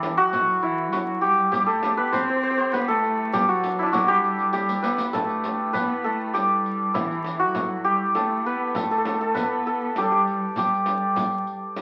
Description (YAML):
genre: Persian modal ensemble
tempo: 100 BPM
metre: 3/4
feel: straight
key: G dastgah mahur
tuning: A4 = 440 Hz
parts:
  - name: santur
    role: melody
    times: 0.0-11.8 s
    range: D4 to C5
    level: -24 LUFS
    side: equal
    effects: none
  - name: dark cello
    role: second line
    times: 0.0-11.7 s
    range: E3 to C4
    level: -32 LUFS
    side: equal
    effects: none
  - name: frame drum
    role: percussion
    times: 0.0-11.8 s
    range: none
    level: -35 LUFS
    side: equal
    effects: none
  - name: riq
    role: percussion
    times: 0.0-11.8 s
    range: none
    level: -39 LUFS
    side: equal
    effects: none
room: wet studio ambience, RT60 0.4 s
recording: very old 78 rpm record, vinyl crackle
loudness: -23 LUFS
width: mono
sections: 0.0-11.8 A section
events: drum fill 4.5-5.1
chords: none